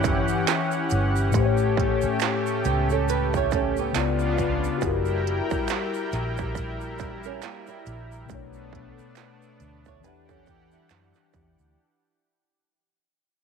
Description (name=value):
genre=R&B, neo-soul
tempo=69 BPM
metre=4/4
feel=swing 58% on 16ths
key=E dorian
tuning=A4 = 440 Hz
part: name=mellow tine electric piano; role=accompaniment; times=0.0-11.8 s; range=A2 to F#5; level=-28 LUFS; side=left 10 dB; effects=medium stereo tremolo
part: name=lush unison pad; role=sustained chords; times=0.0-11.8 s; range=C#3 to G5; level=-29 LUFS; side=equal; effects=chorus
part: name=vintage muted fingered electric bass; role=bass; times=0.0-11.7 s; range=F#1 to F#2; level=-28 LUFS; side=right 1 dB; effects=none
part: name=industrial drum kit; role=drums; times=0.0-11.6 s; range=hi-hat, kick drum, snare drum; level=-29 LUFS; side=right 5 dB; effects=distortion
part: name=egg shaker and finger snaps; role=percussion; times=0.0-11.8 s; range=none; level=-37 LUFS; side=right 15 dB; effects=none
part: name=flamenco guitar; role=second line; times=2.7-11.7 s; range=G3 to C#5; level=-28 LUFS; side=right 16 dB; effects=none
room=light reverb, small room ambience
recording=1960s-style stereo with parts hard left and right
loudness=-22 LUFS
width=side -6 dB against mid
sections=0.0-11.8 A section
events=fade-out 0.0-11.8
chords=0.0 Em69; 1.3 A7; 3.9 C#7b9; 4.8 F#7b9; 8.3 Bm9; 10.0 Em9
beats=0.47 | 1.34 2.21 3.08 3.95 | 4.82 5.69 6.56 7.42 | 8.29 9.16 10.03 10.90